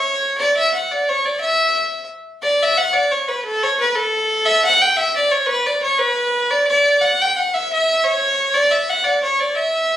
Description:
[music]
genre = celtic folk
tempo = 118 BPM (dotted quarters)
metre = 6/8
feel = straight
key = E dorian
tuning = A4 = 436 Hz
[part]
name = rich fiddle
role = solo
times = 0.0-10.0 s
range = A4 to G5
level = -15 LUFS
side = equal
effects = none
[sound]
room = moderate small room ambience, RT60 0.5 s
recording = recorded on a phone in the room, studio reverb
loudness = -15 LUFS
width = side -12 dB against mid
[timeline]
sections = 0.0-2.4 A section; 2.4-10.0 A section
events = none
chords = none

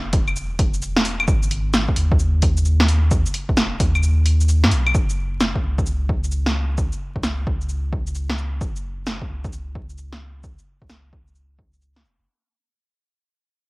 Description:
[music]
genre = future garage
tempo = 131 BPM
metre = 4/4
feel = swing 65% on 16ths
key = unclear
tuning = A4 = 438 Hz
[part]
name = soft dub sub bass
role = bass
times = 0.0-12.3 s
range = D#1 to G#2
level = -21 LUFS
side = equal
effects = sidechain pumping
[part]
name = deep house drum kit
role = drums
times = 0.1-12.2 s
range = claves, hi-hat, shaker, snare drum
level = -22 LUFS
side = equal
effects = overdrive, studio reverb, cassette tape
[part]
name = electronic kick drum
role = drums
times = 0.1-11.7 s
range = none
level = -22 LUFS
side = equal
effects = overdrive, studio reverb, cassette tape
[sound]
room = light reverb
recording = home recording on cassette, vinyl crackle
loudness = -18 LUFS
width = side -24 dB against mid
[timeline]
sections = 0.0-4.9 A section; 4.9-12.3 B section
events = kick drops out 4.0-4.9; fade-out 4.9-12.3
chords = none

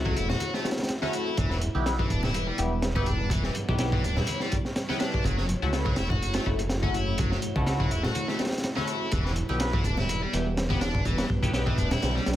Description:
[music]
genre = breakbeat, breaks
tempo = 124 BPM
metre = 4/4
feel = swing 54% on 16ths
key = E dorian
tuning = A4 = 435 Hz
[part]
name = dark analog pad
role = sustained chords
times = 0.0-12.4 s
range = G3 to C#5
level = -35 LUFS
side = equal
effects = chorus, sidechain pumping
[part]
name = band-passed chord stab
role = stabs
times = 0.0-12.4 s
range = A3 to B4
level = -34 LUFS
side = left 2 dB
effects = phaser, digital delay
[part]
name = fat analog bass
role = bass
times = 0.0-12.4 s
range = D1 to C#2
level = -29 LUFS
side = equal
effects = none
[part]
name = heavy high-gain guitar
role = riff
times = 0.1-12.3 s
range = E3 to F#4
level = -33 LUFS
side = left 1 dB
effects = distortion, digital delay
[part]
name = crunchy breakbeat drum kit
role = drums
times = 0.1-12.4 s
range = hi-hat, kick drum, snare drum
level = -28 LUFS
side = equal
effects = none
[part]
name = congas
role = percussion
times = 0.3-12.1 s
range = none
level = -35 LUFS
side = left 1 dB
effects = none
[sound]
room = small room ambience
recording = none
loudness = -24 LUFS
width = side -13 dB against mid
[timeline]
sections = 0.0-12.4 A section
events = kick drops out 12.0-12.4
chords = 0.0 F#m7; 1.4 Em; 5.2 F#m7; 9.1 Em

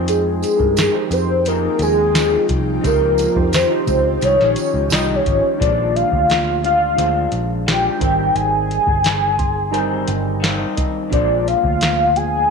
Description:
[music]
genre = indie pop, bedroom pop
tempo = 87 BPM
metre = 4/4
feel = straight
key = unclear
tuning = A4 = 440 Hz
[part]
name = electric guitar through a small old amp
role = accompaniment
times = 0.0-12.5 s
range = Bb2 to Ab4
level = -25 LUFS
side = left 13 dB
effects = lush chorus, warbly pitch drift
[part]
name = mellow tine electric piano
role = accompaniment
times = 0.0-12.5 s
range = G3 to C6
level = -27 LUFS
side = right 13 dB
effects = medium stereo tremolo
[part]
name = vintage muted picked electric bass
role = bass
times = 0.0-12.5 s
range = G1 to G2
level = -22 LUFS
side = equal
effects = none
[part]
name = soft octave-layered synth lead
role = melody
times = 0.1-12.5 s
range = Ab4 to Ab5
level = -17 LUFS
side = left 1 dB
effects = analog chorus, tape echo
[part]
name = ethereal airy pad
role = sustained chords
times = 0.9-5.6 s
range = Eb3 to G5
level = -28 LUFS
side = right 1 dB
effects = ensemble chorus, built-in reverb
[part]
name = soft vintage rhythm box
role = drums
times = 0.1-12.3 s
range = hi-hat, kick drum, snare drum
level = -21 LUFS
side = equal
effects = none
[part]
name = tambourine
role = percussion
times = 0.1-5.1 s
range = none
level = -32 LUFS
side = right 18 dB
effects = none
[sound]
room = light reverb, digital ambience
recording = 1960s-style stereo with parts hard left and right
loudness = -15 LUFS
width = side -5 dB against mid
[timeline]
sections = 0.0-5.6 A section; 5.6-12.5 B section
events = soft synth lead solo 0.0-5.6; tine electric piano fill 9.1-11.1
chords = 0.0 Fm7; 2.8 Dbmaj9#11; 5.6 Bb7; 8.0 Abmaj7; 11.1 Bb7

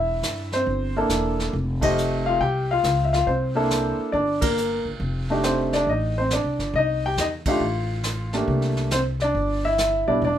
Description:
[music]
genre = jazz piano trio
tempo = 138 BPM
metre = 4/4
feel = swing 66% on 8ths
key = C mixolydian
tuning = A4 = 438 Hz
[part]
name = warm concert grand piano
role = melody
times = 0.0-10.4 s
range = G3 to G5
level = -22 LUFS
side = equal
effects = none
[part]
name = upright bass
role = bass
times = 0.0-10.4 s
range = E1 to G2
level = -26 LUFS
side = equal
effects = none
[part]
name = vintage brush drum kit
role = drums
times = 0.2-10.4 s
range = brushed snare drum, hi-hat, kick drum, ride cymbal, snare drum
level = -30 LUFS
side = right 2 dB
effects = none
[sound]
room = light reverb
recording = minimal, uncompressed stereo recording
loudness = -20 LUFS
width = side -10 dB against mid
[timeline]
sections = 0.0-10.4 A section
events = band accent 1.8, 4.4, 7.4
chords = 0.0 C13; 1.5 F9; 3.3 C13; 5.0 F13; 8.5 C13

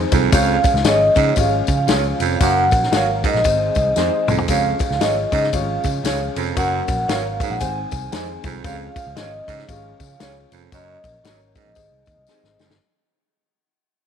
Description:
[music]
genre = uptempo 1960s-style soul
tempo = 116 BPM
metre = 4/4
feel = swing 61% on 8ths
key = Db major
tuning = A4 = 440 Hz
[part]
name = vibraphone with soft mallets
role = melody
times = 0.0-12.6 s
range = Db5 to Ab5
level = -21 LUFS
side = equal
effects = slapback echo
[part]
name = warm upright piano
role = accompaniment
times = 0.0-12.7 s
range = Ab3 to Db5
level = -28 LUFS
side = left 11 dB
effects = none
[part]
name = percussive tonewheel organ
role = sustained chords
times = 0.0-12.8 s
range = Eb3 to Bb4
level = -32 LUFS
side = right 1 dB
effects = slow rotary speaker
[part]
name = vintage muted picked electric bass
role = bass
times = 0.0-12.8 s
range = F1 to Db3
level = -24 LUFS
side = right 1 dB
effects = none
[part]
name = raspy baritone saxophone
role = riff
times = 0.1-12.8 s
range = F2 to Ab2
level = -24 LUFS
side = right 14 dB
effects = none
[part]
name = vintage drum kit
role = drums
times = 0.1-12.8 s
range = hi-hat, kick drum, ride cymbal, snare drum, toms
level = -22 LUFS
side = left 2 dB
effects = none
[part]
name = tambourine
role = percussion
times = 0.1-12.7 s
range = none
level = -34 LUFS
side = left 12 dB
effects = none
[part]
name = electric guitar through a small old amp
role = stabs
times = 0.8-12.4 s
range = Eb4 to Db5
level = -28 LUFS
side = right 14 dB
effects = none
[sound]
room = light reverb, small room ambience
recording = 1960s-style stereo with parts hard left and right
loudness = -16 LUFS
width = side -8 dB against mid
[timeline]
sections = 0.0-12.8 A section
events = fade-out 0.0-12.8; drum fill 4.0-4.5, 12.3-12.8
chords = 0.3 Db; 2.4 Gb; 3.4 Ab; 4.5 Db; 6.6 Gb; 7.6 Ab; 8.6 Db; 10.7 Gb; 11.8 Ab

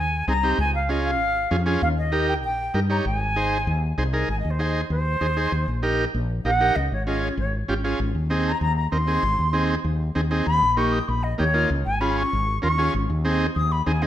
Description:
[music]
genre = latin, cumbia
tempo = 194 BPM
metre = 4/4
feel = straight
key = Ab major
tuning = A4 = 440 Hz
[part]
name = concert flute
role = melody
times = 0.0-14.1 s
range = C5 to Eb6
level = -24 LUFS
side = left 1 dB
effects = none
[part]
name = woody fretless electric bass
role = bass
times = 0.0-14.1 s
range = Ab1 to G2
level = -24 LUFS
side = equal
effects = none
[part]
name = combo organ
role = accompaniment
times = 0.3-14.1 s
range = Bb3 to Db5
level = -26 LUFS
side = right 2 dB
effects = none
[sound]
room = moderate large studio reverb, RT60 1.2 s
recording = minimal, uncompressed stereo recording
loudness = -20 LUFS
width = side -12 dB against mid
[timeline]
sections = 0.0-4.3 A section; 4.3-14.1 B section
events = flute solo 4.3-14.1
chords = 0.0 Ab; 0.6 Db; 1.8 Eb7; 3.1 Ab; 5.5 Eb; 6.8 Db; 8.0 Ab; 10.5 Eb7; 11.7 Db; 12.9 Ab

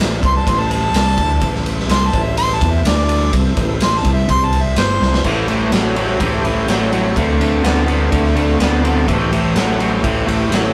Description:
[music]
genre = blues rock power trio and southern rock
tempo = 125 BPM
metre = 4/4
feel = straight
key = A minor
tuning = A4 = 441 Hz
[part]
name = overdriven tonewheel organ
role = sustained chords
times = 0.0-10.7 s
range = G3 to D5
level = -28 LUFS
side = equal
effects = slow rotary speaker, chorus vibrato
[part]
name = fuzz fingered electric bass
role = bass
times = 0.0-10.7 s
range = G1 to E2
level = -21 LUFS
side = equal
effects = overdrive
[part]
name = raw garage drum kit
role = drums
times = 0.0-10.6 s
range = crash cymbal, kick drum, ride cymbal, snare drum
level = -22 LUFS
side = equal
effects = none
[part]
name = warm harmonica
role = melody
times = 0.3-5.2 s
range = C5 to C6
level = -21 LUFS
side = equal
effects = overdrive
[part]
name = overdriven semi-hollow guitar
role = riff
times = 5.2-10.7 s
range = A2 to B3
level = -19 LUFS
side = equal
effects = none
[sound]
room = moderate stone room reverb, RT60 1.3 s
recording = rough rehearsal-room recording, warm saturation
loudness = -16 LUFS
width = mono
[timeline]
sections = 0.0-5.2 A section; 5.2-10.7 B section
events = harmonica solo 0.0-5.2; drum fill 5.0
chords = 0.0 Am; 2.9 D5; 3.3 Am; 4.3 C5; 4.8 Am; 5.2 Am7; 7.2 Dm7; 9.1 Am7

